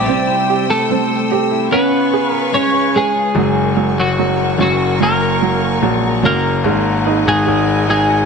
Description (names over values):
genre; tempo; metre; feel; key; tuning
pop ballad; 73 BPM; 4/4; straight; F# major from 3.4 s; A4 = 439 Hz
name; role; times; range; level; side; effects
twelve-string electric guitar; melody; 0.0-8.3 s; F#3 to Db5; -16 LUFS; left 1 dB; slapback echo
clear upright piano; accompaniment; 0.0-8.3 s; F#3 to Ab4; -19 LUFS; right 12 dB; none
warm studio string section; sustained chords; 0.0-8.3 s; G#4 to E6; -24 LUFS; left 2 dB; none
fingerpicked steel-string acoustic guitar; arpeggios; 0.0-8.3 s; C3 to Cb5; -22 LUFS; left 12 dB; none
bright concert grand piano; bass; 0.0-8.3 s; F#1 to A#1; -18 LUFS; left 2 dB; none
room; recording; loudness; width
moderate echo chamber reverb, RT60 1.3 s; 1960s-style stereo with parts hard left and right; -13 LUFS; side -5 dB against mid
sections
0.0-3.4 A section; 3.4-8.3 A section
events
break 0.1-3.4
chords
0.1 C; 1.7 Db7; 3.4 F#add9; 6.6 G#m7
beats
| 0.07 0.89 1.71 2.53 | 3.35 4.18 5.00 5.82 | 6.64 7.46